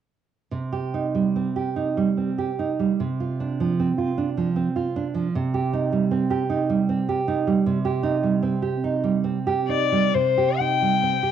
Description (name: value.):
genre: romantic duo for violin and classical guitar.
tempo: 65-79 BPM.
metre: 3/4.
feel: rubato.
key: C minor.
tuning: A4 = 438 Hz.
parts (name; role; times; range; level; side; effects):
nylon-string guitar; accompaniment; 0.5-11.3 s; C3 to G4; -22 LUFS; right 5 dB; cassette tape.
rich violin; melody; 9.7-11.3 s; C5 to G5; -20 LUFS; left 9 dB; cassette tape.
room: moderate spring reverb, RT60 1.6 s, studio reverb.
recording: home recording on cassette.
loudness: -21 LUFS.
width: side -9 dB against mid.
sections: 0.5-10.2 A section; 10.2-11.3 B section.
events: none.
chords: 0.5 Cm; 3.0 Csus24; 5.3 Cm.